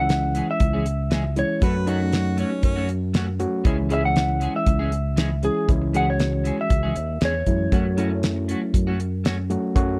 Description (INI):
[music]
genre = straight-eighth soul blues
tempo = 118 BPM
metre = 4/4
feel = straight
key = C# minor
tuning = A4 = 440 Hz
[part]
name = electric guitar through a small old amp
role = melody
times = 0.0-8.2 s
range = G#4 to F#5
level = -28 LUFS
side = equal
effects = spring reverb
[part]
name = overdriven reed electric piano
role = accompaniment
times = 0.0-10.0 s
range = E3 to F#4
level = -28 LUFS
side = equal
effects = none
[part]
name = sustaining fretless electric bass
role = bass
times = 0.0-10.0 s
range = C#2 to F#2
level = -27 LUFS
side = equal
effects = ensemble chorus
[part]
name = damped 70s drum kit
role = drums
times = 0.1-9.9 s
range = hi-hat, kick drum, snare drum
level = -25 LUFS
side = equal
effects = none
[part]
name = clean electric guitar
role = stabs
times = 0.2-9.9 s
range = E3 to G#4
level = -34 LUFS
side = equal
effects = analog chorus
[part]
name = bright harmonica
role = second line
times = 1.6-2.9 s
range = C#4 to B4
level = -32 LUFS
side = equal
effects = overdrive
[sound]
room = little or no reverb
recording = dry, close 1970s-style studio recording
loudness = -22 LUFS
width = mono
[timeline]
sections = 0.0-10.0 A section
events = none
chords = 0.0 C#m; 1.6 F#m; 3.7 C#m; 7.7 F#m